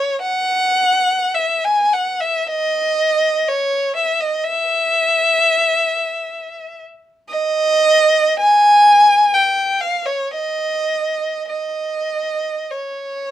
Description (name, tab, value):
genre	classical, free, expressive piece for unaccompanied violin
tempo	48-67 BPM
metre	4/4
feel	rubato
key	C# minor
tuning	A4 = 440 Hz
part	rich violin	solo	0.0-13.3 s	C#5 to G#5	-14 LUFS	equal	none
room	light reverb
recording	dark, warm production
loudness	-14 LUFS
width	side -12 dB against mid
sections	0.0-13.3 A section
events	none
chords	none